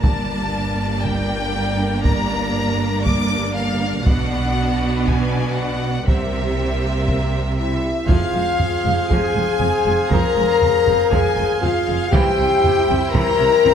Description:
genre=cinematic, epic orchestral film score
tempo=119 BPM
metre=4/4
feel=straight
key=F harmonic minor from 8.1 s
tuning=A4 = 443 Hz
part: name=clear studio violin section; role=melody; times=0.0-13.7 s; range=E5 to D6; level=-27 LUFS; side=left 3 dB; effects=none
part: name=rich symphonic violin section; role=second line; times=0.0-13.7 s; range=F#4 to Bb5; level=-28 LUFS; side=left 2 dB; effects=none
part: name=rich studio viola section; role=accompaniment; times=0.0-13.7 s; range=E3 to Ab4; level=-26 LUFS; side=right 2 dB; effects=none
part: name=mellow French horn section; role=sustained chords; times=0.0-13.7 s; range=Bb3 to Bb4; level=-21 LUFS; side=left 5 dB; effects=none
part: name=rich symphonic cello section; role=bass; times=0.0-13.7 s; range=F2 to C3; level=-26 LUFS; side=right 2 dB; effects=none
part: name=rich symphonic double bass section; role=bass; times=0.0-13.7 s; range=F1 to C2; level=-26 LUFS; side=right 3 dB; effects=none
part: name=taiko ensemble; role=drums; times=0.0-13.7 s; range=none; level=-22 LUFS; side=right 1 dB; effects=none
part: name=large flute ensemble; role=second line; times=7.6-13.7 s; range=E5 to Bb5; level=-27 LUFS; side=right 1 dB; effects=none
part: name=pipe organ, plenum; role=sustained chords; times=8.1-13.7 s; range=C4 to F5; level=-25 LUFS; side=right 2 dB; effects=none
room=moderate concert hall reverb, RT60 2.3 s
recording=none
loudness=-16 LUFS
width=side -8 dB against mid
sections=0.0-8.1 A section; 8.1-13.7 A section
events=none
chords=0.0 Gm; 4.1 Bm; 6.1 C7; 8.1 Fm; 12.1 C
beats=| 0.03 0.54 1.04 1.54 | 2.05 2.55 3.06 3.56 | 4.07 4.57 5.07 5.58 | 6.08 6.59 7.09 7.60 | 8.10 8.61 9.11 9.61 | 10.12 10.62 11.13 11.63 | 12.14 12.64 13.15 13.65

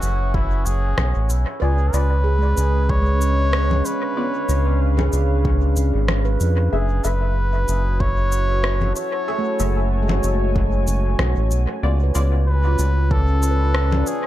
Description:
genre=ambient dub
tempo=94 BPM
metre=4/4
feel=swing 56% on 16ths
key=F# minor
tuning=A4 = 437 Hz
part: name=trumpet with cup mute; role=melody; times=0.0-14.3 s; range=E4 to C#5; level=-27 LUFS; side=equal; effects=analog delay
part: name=deep dark ambient pad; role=sustained chords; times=0.0-14.3 s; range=C#4 to A5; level=-27 LUFS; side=equal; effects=chorus, built-in reverb
part: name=handpan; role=arpeggios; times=0.0-14.3 s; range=G#3 to B4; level=-30 LUFS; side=right 3 dB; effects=analog delay
part: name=round analog bass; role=bass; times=0.0-14.0 s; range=F#1 to E#2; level=-18 LUFS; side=equal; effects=tube saturation
part: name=electronic shaker, rim click and congas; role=drums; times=0.0-14.2 s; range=none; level=-27 LUFS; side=left 1 dB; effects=dub echo
part: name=electronic kick drum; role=drums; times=0.3-13.3 s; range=none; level=-23 LUFS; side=equal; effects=overdrive
part: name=filtered dub chord stab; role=stabs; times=1.6-12.4 s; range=A3 to E5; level=-32 LUFS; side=left 3 dB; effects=phaser, lush chorus, dub echo
room=little or no reverb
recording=echo-heavy mix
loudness=-17 LUFS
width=side -14 dB against mid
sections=0.0-14.3 A section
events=none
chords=0.0 F#7sus2; 1.6 C#7b9; 6.7 F#m9; 11.8 C#7b9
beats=0.34 0.98 | 1.62 2.26 2.90 3.53 | 4.17 4.81 5.45 6.09 | 6.72 7.36 8.00 8.64 | 9.28 9.92 10.55 11.19 | 11.83 12.47 13.11 13.75

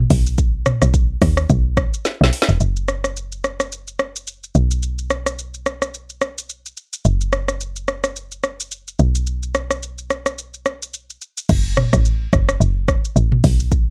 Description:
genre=afrobeats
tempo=108 BPM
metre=4/4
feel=swing 58% on 16ths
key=unclear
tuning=A4 = 440 Hz
part: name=woody log drum bass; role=bass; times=0.0-13.9 s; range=E1 to D#2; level=-21 LUFS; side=equal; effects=none
part: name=afro-pop drum kit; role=drums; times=0.1-13.9 s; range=crash cymbal, hi-hat, kick drum, rim click, shaker, snare drum, toms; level=-21 LUFS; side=equal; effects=none
room=little or no reverb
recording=none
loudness=-20 LUFS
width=mono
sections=0.0-2.6 A section; 2.6-11.5 B section; 11.5-13.9 A section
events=drum fill 2.0-2.6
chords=none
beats=| 0.38 0.94 1.49 2.05 | 2.60 3.16 3.72 4.27 | 4.83 5.38 5.94 6.49 | 7.05 7.61 8.16 8.72 | 9.27 9.83 10.38 10.94 | 11.49 12.05 12.61 13.16 | 13.72

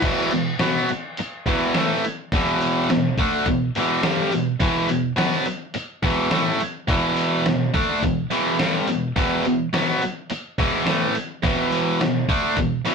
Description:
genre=garage rock duo or trio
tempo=105 BPM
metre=4/4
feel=straight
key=unclear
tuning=A4 = 443 Hz
part: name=biting overdriven guitar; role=riff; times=0.0-12.9 s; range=E2 to D4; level=-20 LUFS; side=right 1 dB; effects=none
part: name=lo-fi sampler-style drum kit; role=drums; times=0.0-12.9 s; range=crash cymbal, hi-hat, kick drum, snare drum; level=-25 LUFS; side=left 1 dB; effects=none
room=moderate small room ambience, RT60 0.5 s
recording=rough rehearsal-room recording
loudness=-19 LUFS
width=side -5 dB against mid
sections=0.0-12.9 A section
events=none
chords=0.0 E5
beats=| 0.03 0.60 1.17 1.74 | 2.31 2.89 3.46 4.03 | 4.60 5.17 5.74 6.31 | 6.88 7.46 8.02 8.59 | 9.16 9.73 10.30 10.87 | 11.44 12.01 12.58

